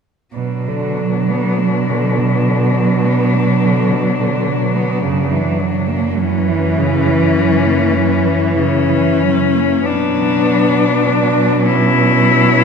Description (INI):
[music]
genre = classical, lyrical piece for cello ensemble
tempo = 43-54 BPM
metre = 4/4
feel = rubato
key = B minor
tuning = A4 = 441 Hz
[part]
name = clear cello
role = second line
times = 0.3-12.6 s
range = B2 to D4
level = -18 LUFS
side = right 5 dB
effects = none
[part]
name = clear cello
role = accompaniment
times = 0.3-12.6 s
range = E3 to F#3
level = -20 LUFS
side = left 1 dB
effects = none
[part]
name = rich cello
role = melody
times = 0.4-12.6 s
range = C#4 to E4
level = -18 LUFS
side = left 8 dB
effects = none
[part]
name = rich cello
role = bass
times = 0.4-12.6 s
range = F#2 to B2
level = -18 LUFS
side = right 2 dB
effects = none
[sound]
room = wet cathedral reverb, RT60 5.4 s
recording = recorded in a church or concert hall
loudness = -12 LUFS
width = side -6 dB against mid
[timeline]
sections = 0.4-9.9 A section; 9.9-12.6 B section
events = none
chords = 0.4 Bm; 5.0 F#7(no3); 9.9 Bm